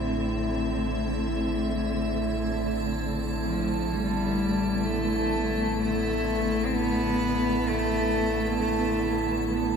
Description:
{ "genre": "dark ambient drone", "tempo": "64 BPM", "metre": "4/4", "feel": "straight", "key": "A minor", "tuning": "A4 = 440 Hz", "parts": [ { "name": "dark symphonic cello section", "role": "sustained chords", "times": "0.0-9.8 s", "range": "D3 to C4", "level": "-29 LUFS", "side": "equal", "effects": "none" }, { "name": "deep rumbling drone", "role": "drone", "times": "0.0-9.8 s", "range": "A1", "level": "-33 LUFS", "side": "equal", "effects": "built-in reverb, wide subtle chorus" }, { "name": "icy glass pad", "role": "texture", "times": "0.0-9.8 s", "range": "E4 to A5", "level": "-30 LUFS", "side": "right 2 dB", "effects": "chorus, built-in reverb" }, { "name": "clear cello", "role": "melody", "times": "3.5-9.3 s", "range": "F3 to C4", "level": "-27 LUFS", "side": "left 2 dB", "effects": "ping-pong delay" } ], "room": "wet cathedral reverb, RT60 6.4 s", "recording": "none", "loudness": "-24 LUFS", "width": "side -6 dB against mid", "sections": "0.0-9.8 A section", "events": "none", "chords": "0.0 Am" }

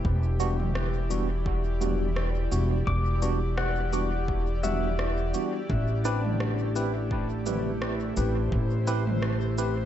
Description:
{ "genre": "ambient dub", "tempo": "85 BPM", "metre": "4/4", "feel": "swing 56% on 16ths", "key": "E minor", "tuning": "A4 = 440 Hz", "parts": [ { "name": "airy breathy pad", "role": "sustained chords", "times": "0.0-9.9 s", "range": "E3 to D5", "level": "-33 LUFS", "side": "equal", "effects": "chorus" }, { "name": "pedal steel guitar", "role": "arpeggios", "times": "0.0-8.6 s", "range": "D4 to D6", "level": "-36 LUFS", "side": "left 4 dB", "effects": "dub echo" }, { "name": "upright bass", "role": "bass", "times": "0.0-9.9 s", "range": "E1 to A1", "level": "-28 LUFS", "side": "equal", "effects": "none" }, { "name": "electronic kick drum", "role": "drums", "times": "0.0-8.7 s", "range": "none", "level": "-32 LUFS", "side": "equal", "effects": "overdrive" }, { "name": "bright tine electric piano", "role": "stabs", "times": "0.4-9.7 s", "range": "G3 to B4", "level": "-33 LUFS", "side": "right 2 dB", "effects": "medium stereo tremolo, dub echo" }, { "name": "organic electronic drum kit", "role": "drums", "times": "0.4-9.7 s", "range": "cabasa, rim click, toms", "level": "-35 LUFS", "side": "right 1 dB", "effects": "overdrive, dub echo" } ], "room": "light reverb", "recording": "nothing above 8.0 kHz", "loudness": "-25 LUFS", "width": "side -11 dB against mid", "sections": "0.0-9.9 A section", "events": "none", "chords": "0.1 Em7; 5.7 Am7" }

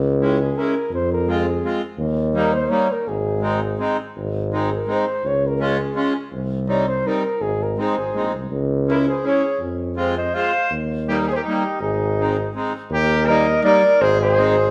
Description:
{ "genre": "alpine folk, alpine dance band", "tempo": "165 BPM", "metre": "3/4", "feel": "straight", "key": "Ab major", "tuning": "A4 = 440 Hz", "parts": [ { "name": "warm tuba", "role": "bass", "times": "0.0-14.7 s", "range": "Ab1 to F2", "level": "-25 LUFS", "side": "equal", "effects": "none" }, { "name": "mellow flugelhorn", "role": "melody", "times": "0.2-14.7 s", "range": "G4 to F5", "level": "-24 LUFS", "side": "equal", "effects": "none" }, { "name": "accordion", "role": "accompaniment", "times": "0.2-14.6 s", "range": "G3 to F4", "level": "-26 LUFS", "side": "equal", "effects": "none" }, { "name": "bright trumpet", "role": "second line", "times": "7.8-14.7 s", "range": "Eb4 to C5", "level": "-27 LUFS", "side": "equal", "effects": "none" } ], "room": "wet large studio reverb, RT60 1.4 s", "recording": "band playing live in one room", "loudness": "-20 LUFS", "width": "mono", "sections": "0.0-4.2 A section; 4.2-12.9 A section; 12.9-14.7 B section", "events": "none", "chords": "0.0 Dbm; 0.9 Fm; 2.0 Eb; 3.1 Ab; 5.2 Db; 6.3 Cm; 7.4 Ab; 8.5 Dbm; 9.6 Fm; 10.7 Eb; 11.8 Ab; 12.9 Eb; 14.0 Ab" }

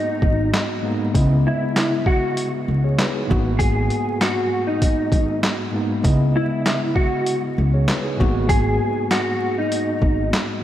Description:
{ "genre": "hip hop, boom-bap hip-hop", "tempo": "98 BPM", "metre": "4/4", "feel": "swing 55% on 16ths", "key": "C# minor", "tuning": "A4 = 440 Hz", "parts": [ { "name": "mellow electric guitar", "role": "melody", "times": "0.0-10.3 s", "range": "D#4 to G#4", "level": "-24 LUFS", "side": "equal", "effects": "ensemble chorus, high-pass filter, low-pass filter, diffuse ambient delay" }, { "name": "mellow tine electric piano", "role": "accompaniment", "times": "0.0-10.6 s", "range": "G#2 to D#5", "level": "-24 LUFS", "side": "equal", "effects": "medium stereo tremolo, cassette tape, high-pass filter, low-pass filter" }, { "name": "upright bass", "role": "bass", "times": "0.2-10.3 s", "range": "G#1 to C#2", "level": "-20 LUFS", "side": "equal", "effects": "none" }, { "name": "boom bap sampler-style drum kit", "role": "drums", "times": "0.2-10.5 s", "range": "handclaps, hi-hat, kick drum, snare drum", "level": "-22 LUFS", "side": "equal", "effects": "overdrive" } ], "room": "moderate cathedral reverb, RT60 4.4 s", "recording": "dreamy mix soaked in reverb, vinyl crackle", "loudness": "-17 LUFS", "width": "side -12 dB against mid", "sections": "0.0-10.6 A section", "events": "none", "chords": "0.0 G#m9; 1.1 C#m9; 3.3 G#m9; 6.0 C#m9; 8.2 G#m9" }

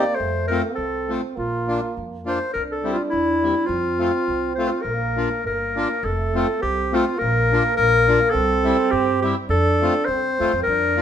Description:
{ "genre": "alpine folk, alpine dance band", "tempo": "103 BPM", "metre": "2/4", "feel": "swing 53% on 8ths, rubato", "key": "Bb major, F major from 6.0 s", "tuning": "A4 = 440 Hz", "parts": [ { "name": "clear clarinet", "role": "melody", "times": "0.0-11.0 s", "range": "E4 to D5", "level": "-21 LUFS", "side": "left 2 dB", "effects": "none" }, { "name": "clear euphonium", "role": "second line", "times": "0.0-11.0 s", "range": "A3 to D4", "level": "-26 LUFS", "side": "right 5 dB", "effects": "none" }, { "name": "accordion", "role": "accompaniment", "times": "0.0-11.0 s", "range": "G3 to F4", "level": "-25 LUFS", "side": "left 3 dB", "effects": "none" }, { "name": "upright bass", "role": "bass", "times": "0.2-11.0 s", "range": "F1 to G2", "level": "-26 LUFS", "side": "equal", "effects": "none" } ], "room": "wet stone room reverb, RT60 1.0 s", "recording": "band playing live in one room", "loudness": "-18 LUFS", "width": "side -9 dB against mid", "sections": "0.0-6.0 A section; 6.0-11.0 B section", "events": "none", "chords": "0.2 F; 1.4 Bb; 2.5 C; 3.7 F; 4.8 Bb; 6.0 F; 7.2 Bb; 8.3 C; 9.5 F" }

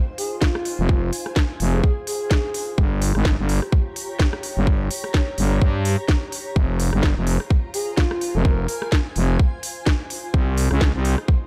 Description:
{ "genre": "bass house", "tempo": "127 BPM", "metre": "4/4", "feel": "swing 56% on 16ths", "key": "F minor", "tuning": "A4 = 439 Hz", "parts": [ { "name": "granular cloud pad", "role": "texture", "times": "0.0-11.5 s", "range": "Eb4 to Bb5", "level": "-37 LUFS", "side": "equal", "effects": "built-in reverb, sidechain pumping" }, { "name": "breathy flute-like synth lead", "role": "melody", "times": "0.2-2.7, 7.7-8.9 s", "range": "F4 to Bb4", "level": "-30 LUFS", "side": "equal", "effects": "chorus, dub echo" }, { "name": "garage drum kit", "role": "drums", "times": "0.2-11.3 s", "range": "hi-hat, rim click, snare drum", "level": "-29 LUFS", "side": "equal", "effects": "none" }, { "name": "electronic kick drum", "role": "drums", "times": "0.4-11.4 s", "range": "none", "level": "-21 LUFS", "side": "equal", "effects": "none" }, { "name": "growling FM bass", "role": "bass", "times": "0.8-11.2 s", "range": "F1 to G2", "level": "-22 LUFS", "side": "equal", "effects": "overdrive, sidechain pumping" } ], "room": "little or no reverb", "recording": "dark, warm production", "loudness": "-21 LUFS", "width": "mono", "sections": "0.0-11.5 A section", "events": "none", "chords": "0.0 Fm; 2.8 Gdim; 6.6 Fm; 10.3 Cm" }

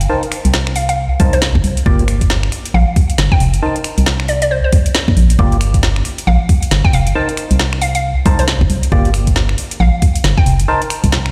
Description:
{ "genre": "UK garage, two-step garage", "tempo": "136 BPM", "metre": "4/4", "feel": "swing 60% on 16ths", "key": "G minor", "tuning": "A4 = 441 Hz", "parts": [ { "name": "hollow square pluck", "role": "melody", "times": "0.0-10.4 s", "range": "C5 to G5", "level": "-24 LUFS", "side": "equal", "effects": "chorus, delay" }, { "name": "organ-like FM bass", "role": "bass", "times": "0.0-11.3 s", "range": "F1 to Eb2", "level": "-16 LUFS", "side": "equal", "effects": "none" }, { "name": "garage drum kit", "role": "drums", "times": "0.0-11.3 s", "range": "finger snaps, hi-hat, snare drum", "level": "-22 LUFS", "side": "equal", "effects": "overdrive, small room ambience" }, { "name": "percussive organ stab", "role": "stabs", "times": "0.1-10.8 s", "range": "Bb3 to A5", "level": "-24 LUFS", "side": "equal", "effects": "chorus, phaser, cassette tape, delay" }, { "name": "electronic kick drum", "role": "drums", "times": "1.2-11.1 s", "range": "none", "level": "-15 LUFS", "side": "equal", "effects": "overdrive, small room ambience" } ], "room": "light reverb", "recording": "played on a big sound system in a bare room, stone room reverb", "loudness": "-14 LUFS", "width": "mono", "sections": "0.0-11.3 A section", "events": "none", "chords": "0.1 Cm7; 1.9 Gm7; 3.6 Cm7; 5.4 Gm7; 7.2 Cm7; 8.9 Gm7; 10.7 Cm7" }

